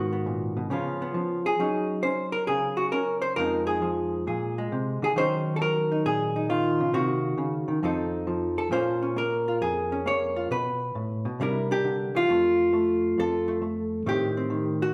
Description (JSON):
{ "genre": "solo jazz", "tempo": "135 BPM", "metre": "4/4", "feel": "swing 68% on 8ths", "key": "unclear", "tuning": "A4 = 440 Hz", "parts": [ { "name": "hollow-body jazz guitar", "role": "solo", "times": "0.0-14.9 s", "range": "F2 to Db5", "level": "-26 LUFS", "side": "equal", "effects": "none" } ], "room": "wet large studio reverb, RT60 1.2 s", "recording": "band playing live in one room", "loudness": "-26 LUFS", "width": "mono", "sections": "0.0-12.3 A section; 12.3-14.9 B section", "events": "none", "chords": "0.0 Abm7; 0.7 Db7; 1.6 Gb5; 3.4 Fm7; 4.3 Bb7; 5.1 Ebm7; 6.9 Cm7b5; 7.8 F7; 8.7 Bbm9; 10.5 Asus2; 11.4 C9; 12.3 F; 14.1 Am7b5" }